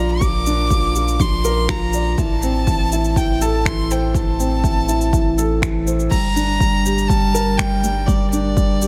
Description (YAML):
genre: piano and strings electronica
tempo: 122 BPM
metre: 4/4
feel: straight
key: unclear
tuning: A4 = 441 Hz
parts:
  - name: warm violin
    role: melody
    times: 0.0-8.9 s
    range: D5 to D6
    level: -26 LUFS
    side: equal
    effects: none
  - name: felt-muted upright piano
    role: riff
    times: 0.0-8.9 s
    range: E3 to D5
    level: -23 LUFS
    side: equal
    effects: delay
  - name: warm sub bass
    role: bass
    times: 0.0-8.9 s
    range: G1 to Bb1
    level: -24 LUFS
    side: equal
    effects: sidechain pumping
  - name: electronic kick drum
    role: drums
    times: 0.2-8.7 s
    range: none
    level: -22 LUFS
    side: equal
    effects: overdrive
  - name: organic electronic drum kit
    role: drums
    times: 0.2-8.9 s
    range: crash cymbal, finger snaps, shaker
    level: -29 LUFS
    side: equal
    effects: none
room: light reverb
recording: none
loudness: -18 LUFS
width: mono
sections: 0.0-8.9 A section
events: none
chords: 0.0 Bb; 2.2 Am; 6.1 Gm